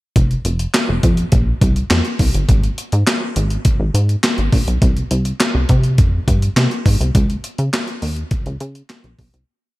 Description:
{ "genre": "early-eighties boogie funk", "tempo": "103 BPM", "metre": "4/4", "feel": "straight", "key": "F minor", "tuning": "A4 = 438 Hz", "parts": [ { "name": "plucky analog bass", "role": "bass", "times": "0.2-9.4 s", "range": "F1 to Db3", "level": "-17 LUFS", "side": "equal", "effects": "none" }, { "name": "breakbeat sampler-style drum kit", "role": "drums", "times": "0.2-9.5 s", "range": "handclaps, hi-hat, kick drum, snare drum", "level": "-16 LUFS", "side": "equal", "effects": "overdrive, gated reverb" } ], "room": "little or no reverb", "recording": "bright 1980s-style digital production", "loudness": "-14 LUFS", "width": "side -19 dB against mid", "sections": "0.2-9.5 verse", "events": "fade-out 7.2-9.5", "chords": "none" }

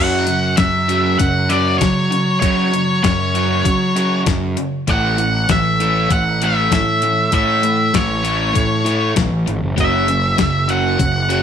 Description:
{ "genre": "indie rock", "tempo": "98 BPM", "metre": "4/4", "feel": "straight", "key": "unclear", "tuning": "A4 = 440 Hz", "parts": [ { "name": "octave-fuzz lead guitar", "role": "melody", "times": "0.0-11.4 s", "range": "C#5 to F#5", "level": "-18 LUFS", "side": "equal", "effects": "distortion, slapback echo" }, { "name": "overdriven electric guitar", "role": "riff", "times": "0.0-11.4 s", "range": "F#2 to A3", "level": "-21 LUFS", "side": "right 1 dB", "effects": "none" }, { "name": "fuzz picked electric bass", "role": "bass", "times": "0.0-11.4 s", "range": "F#1 to F#3", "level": "-19 LUFS", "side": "right 1 dB", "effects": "overdrive" }, { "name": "clean 12-bit digital drum machine", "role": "drums", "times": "0.3-11.4 s", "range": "hi-hat, kick drum, snare drum", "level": "-19 LUFS", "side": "left 3 dB", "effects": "none" } ], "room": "light reverb", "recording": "1960s-style stereo", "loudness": "-14 LUFS", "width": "side -8 dB against mid", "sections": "0.0-11.4 A section", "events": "none", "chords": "0.0 F#5; 4.9 A; 9.8 F#5" }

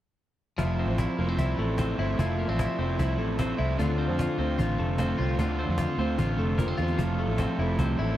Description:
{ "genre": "jangly indie pop", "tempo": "150 BPM", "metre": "4/4", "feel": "straight", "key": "F major", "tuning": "A4 = 439 Hz", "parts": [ { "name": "raw garage guitar", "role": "accompaniment", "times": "0.6-8.2 s", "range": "D3 to C5", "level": "-32 LUFS", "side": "right 6 dB", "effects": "overdrive" }, { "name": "twelve-string electric guitar", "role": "arpeggios", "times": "0.6-8.2 s", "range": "D3 to F4", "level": "-29 LUFS", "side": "left 3 dB", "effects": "tape echo" }, { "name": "vintage muted fingered electric bass", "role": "bass", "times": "0.6-8.2 s", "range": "F1 to F2", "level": "-28 LUFS", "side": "equal", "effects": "none" }, { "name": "cajon", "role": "drums", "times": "0.6-7.9 s", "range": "none", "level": "-32 LUFS", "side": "equal", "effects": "none" } ], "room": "little or no reverb", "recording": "dry, close 1970s-style studio recording", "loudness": "-25 LUFS", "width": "side -13 dB against mid", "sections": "0.6-7.0 A section; 7.0-8.2 B section", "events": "drum fill 6.6-7.0", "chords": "0.6 Fmaj7; 3.8 Dm7; 7.0 Fmaj7" }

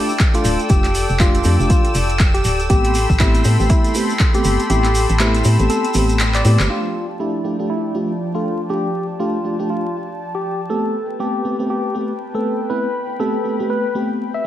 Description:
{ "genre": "deep house", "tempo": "120 BPM", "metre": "4/4", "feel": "swing 59% on 16ths", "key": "unclear", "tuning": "A4 = 437 Hz", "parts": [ { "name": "warm analog pad", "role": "sustained chords", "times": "0.0-14.5 s", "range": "F3 to D6", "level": "-26 LUFS", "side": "left 1 dB", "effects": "chorus, tremolo, sidechain pumping" }, { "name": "mellow FM electric piano", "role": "stabs", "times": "0.0-14.5 s", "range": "A3 to A4", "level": "-22 LUFS", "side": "equal", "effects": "chorus, sidechain pumping, diffuse ambient delay" }, { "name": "string machine, violins", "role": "texture", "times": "0.0-6.7 s", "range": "E6", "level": "-30 LUFS", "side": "equal", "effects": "ensemble chorus" }, { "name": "tube shaker", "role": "percussion", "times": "0.1-6.7 s", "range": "none", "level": "-31 LUFS", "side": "right 2 dB", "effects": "none" }, { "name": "deep house drum kit", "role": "drums", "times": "0.2-6.7 s", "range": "handclaps, hi-hat", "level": "-24 LUFS", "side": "equal", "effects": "overdrive, studio reverb" }, { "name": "electronic kick drum", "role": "drums", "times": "0.2-4.3 s", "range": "none", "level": "-16 LUFS", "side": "equal", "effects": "overdrive, studio reverb" }, { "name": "bright tine electric piano", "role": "melody", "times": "0.3-14.5 s", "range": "E4 to E5", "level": "-23 LUFS", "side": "left 1 dB", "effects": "medium stereo tremolo, diffuse ambient delay" }, { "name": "organ-like FM bass", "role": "bass", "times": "0.4-6.7 s", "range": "D1 to A2", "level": "-17 LUFS", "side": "equal", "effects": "sidechain pumping" } ], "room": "moderate plate reverb, RT60 1.1 s", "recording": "dreamy mix soaked in reverb, vinyl crackle", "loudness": "-15 LUFS", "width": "side -12 dB against mid", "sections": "0.0-6.7 A section; 6.7-14.5 B section", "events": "kick drops out 4.7-6.7; drum fill 6.3-6.7; filter sweep on analog synth pad 6.7-14.5", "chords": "0.0 F69; 2.7 Am9; 6.7 F69; 10.7 Am9" }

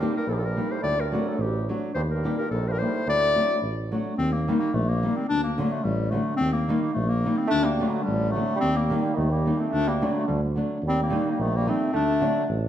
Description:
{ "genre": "balkan folk, Balkan wedding band", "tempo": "108 BPM", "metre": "2/4", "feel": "swing 56% on 16ths", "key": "unclear", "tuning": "A4 = 439 Hz", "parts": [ { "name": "clear clarinet", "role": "melody", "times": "0.0-12.5 s", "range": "G3 to D5", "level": "-26 LUFS", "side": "left 3 dB", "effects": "none" }, { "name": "warm bassoon", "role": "second line", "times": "0.0-3.6, 7.5-12.5 s", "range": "D2 to A3", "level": "-30 LUFS", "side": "right 4 dB", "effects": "none" }, { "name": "nylon-string guitar", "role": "accompaniment", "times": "0.0-12.4 s", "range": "D3 to G4", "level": "-28 LUFS", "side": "equal", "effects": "none" }, { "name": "mellow tuba", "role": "bass", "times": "0.0-12.7 s", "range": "A1 to Eb2", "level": "-28 LUFS", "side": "right 1 dB", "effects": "none" } ], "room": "wet recital hall reverb, RT60 1.4 s", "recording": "none", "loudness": "-22 LUFS", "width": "side -10 dB against mid", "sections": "0.0-4.2 A section; 4.2-12.7 A section", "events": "none", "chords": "0.0 Eb; 0.8 D; 2.0 Eb; 3.1 D; 4.2 Eb; 5.3 D; 6.4 Eb; 7.5 D; 8.6 Eb; 9.7 D; 10.8 Eb; 12.0 D" }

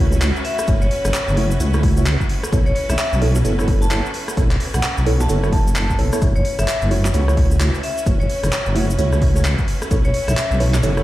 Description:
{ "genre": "UK garage, two-step garage", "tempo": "130 BPM", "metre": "4/4", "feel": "swing 61% on 16ths", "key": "F# minor", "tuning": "A4 = 440 Hz", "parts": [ { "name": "deep mellow chord stab", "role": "stabs", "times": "0.0-11.0 s", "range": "A3 to C#5", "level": "-25 LUFS", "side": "right 2 dB", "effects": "chorus, tape echo" }, { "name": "deep soft wobble bass", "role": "bass", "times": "0.0-11.0 s", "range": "F#1 to C#2", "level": "-18 LUFS", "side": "equal", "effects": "chorus" }, { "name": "clear symphonic string section", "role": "texture", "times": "0.0-11.0 s", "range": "C#4 to E5", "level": "-31 LUFS", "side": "equal", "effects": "sidechain pumping" }, { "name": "tube shaker", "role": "percussion", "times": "0.1-11.0 s", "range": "none", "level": "-34 LUFS", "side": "left 2 dB", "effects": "none" }, { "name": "garage drum kit", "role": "drums", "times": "0.2-11.0 s", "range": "bongos, handclaps, hi-hat, rim click", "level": "-26 LUFS", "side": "equal", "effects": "none" }, { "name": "vibraphone with hard mallets", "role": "melody", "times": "0.4-10.5 s", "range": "C#5 to A5", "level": "-25 LUFS", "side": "left 2 dB", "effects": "tape echo" }, { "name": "electronic kick drum", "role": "drums", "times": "0.7-10.0 s", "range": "none", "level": "-19 LUFS", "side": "equal", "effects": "none" } ], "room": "digital ambience", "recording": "played on a big sound system in a bare room, stone room reverb", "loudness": "-16 LUFS", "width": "side -15 dB against mid", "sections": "0.0-11.0 A section", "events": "none", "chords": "0.0 F#m7" }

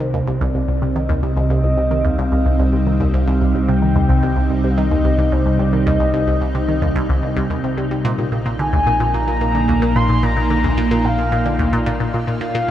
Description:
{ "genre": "ambient, sequencer-driven space music", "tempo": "110 BPM", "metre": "4/4", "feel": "straight", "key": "C minor", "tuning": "A4 = 440 Hz", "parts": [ { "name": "mellow horn-like synth lead", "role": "melody", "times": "0.0-12.7 s", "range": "C5 to C6", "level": "-24 LUFS", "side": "left 1 dB", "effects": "phaser, lush chorus, tape echo" }, { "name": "evolving wavetable pad", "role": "sustained chords", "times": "0.0-12.7 s", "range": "Bb2 to Bb4", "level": "-20 LUFS", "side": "equal", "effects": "ensemble chorus, built-in reverb, phaser" }, { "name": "resonant blip pluck", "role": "riff", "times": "0.0-12.7 s", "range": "C2 to G3", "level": "-20 LUFS", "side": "equal", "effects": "phaser, tape echo" }, { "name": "warm sub bass", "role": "bass", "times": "0.0-12.7 s", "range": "G1 to C2", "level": "-21 LUFS", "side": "equal", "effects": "none" } ], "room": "wet huge ambient reverb, RT60 7.8 s", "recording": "in a vast, echoing space", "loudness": "-15 LUFS", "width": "side -11 dB against mid", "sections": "0.0-12.7 A section", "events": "none", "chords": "0.0 Cm; 8.0 Bbsus4" }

